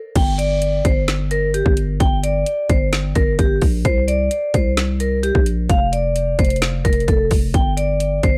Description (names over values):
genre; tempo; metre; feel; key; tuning
hip hop, trap; 130 BPM; 4/4; half-time; G minor; A4 = 442 Hz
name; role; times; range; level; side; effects
vibraphone with medium hard mallets; melody; 0.2-8.4 s; G4 to G5; -23 LUFS; equal; low-pass filter
growling 808-style bass; bass; 0.2-8.4 s; F1 to C2; -23 LUFS; equal; none
trap drum kit; drums; 0.2-8.3 s; crash cymbal, hi-hat, kick drum, snare drum; -21 LUFS; equal; none
room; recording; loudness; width
little or no reverb; dark, warm production; -18 LUFS; mono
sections
0.2-8.4 A section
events
break 0.0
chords
0.2 G5; 3.8 Bbadd9; 5.7 F5; 7.5 G5